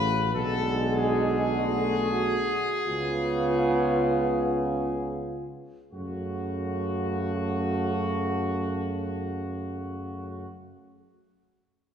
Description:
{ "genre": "classical, hymn-like piece for brass band", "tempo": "35-49 BPM", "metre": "4/4", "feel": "rubato", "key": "F# minor", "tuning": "A4 = 440 Hz", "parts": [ { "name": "dark trumpet section", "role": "melody", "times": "0.0-10.5 s", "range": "F#4 to B4", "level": "-32 LUFS", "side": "left 3 dB", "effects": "none" }, { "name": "dark French horn section", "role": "second line", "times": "0.0-10.5 s", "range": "E#4 to F#4", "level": "-32 LUFS", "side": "right 4 dB", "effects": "none" }, { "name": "clear euphonium", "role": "accompaniment", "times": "0.0-10.5 s", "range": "G#3 to B3", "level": "-32 LUFS", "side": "left 1 dB", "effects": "none" }, { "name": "clear trombone", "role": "accompaniment", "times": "0.0-10.5 s", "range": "C#3 to D3", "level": "-34 LUFS", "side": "right 2 dB", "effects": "none" }, { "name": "dark tuba", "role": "bass", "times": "0.0-10.5 s", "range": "A1 to F#2", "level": "-31 LUFS", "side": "equal", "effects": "none" } ], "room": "wet scoring stage reverb, RT60 1.9 s", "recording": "heard from further back in the room", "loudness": "-25 LUFS", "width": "side -8 dB against mid", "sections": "0.0-5.9 A section; 5.9-11.9 B section", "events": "slowing down 0.0-5.9", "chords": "0.3 G#m7b5/B; 2.9 C#7; 5.9 F#m" }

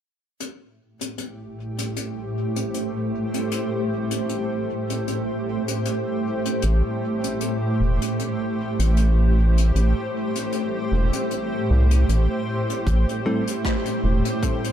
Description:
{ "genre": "ambient dub", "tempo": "77 BPM", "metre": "4/4", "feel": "swing 55% on 16ths", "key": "A minor", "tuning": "A4 = 440 Hz", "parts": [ { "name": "granular cloud pad", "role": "sustained chords", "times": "1.3-14.7 s", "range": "A2 to C5", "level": "-24 LUFS", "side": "right 1 dB", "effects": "built-in reverb" }, { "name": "jazz brush drum kit", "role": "drums", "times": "0.4-14.7 s", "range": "hi-hat, rim click", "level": "-32 LUFS", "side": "left 2 dB", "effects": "none" }, { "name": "round analog bass", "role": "bass", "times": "6.6-14.2 s", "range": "E1 to C2", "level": "-17 LUFS", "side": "equal", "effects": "none" }, { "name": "electronic kick drum", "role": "drums", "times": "12.9-14.6 s", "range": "none", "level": "-26 LUFS", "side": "equal", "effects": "none" }, { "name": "bell-like tine electric piano", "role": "stabs", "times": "13.3-13.4 s", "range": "G3 to A4", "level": "-29 LUFS", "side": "left 2 dB", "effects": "dub echo" } ], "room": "light reverb, studio reverb", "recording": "none", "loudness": "-21 LUFS", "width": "side -10 dB against mid", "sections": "0.4-12.9 A section; 12.9-14.7 B section", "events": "none", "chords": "0.4 Am7" }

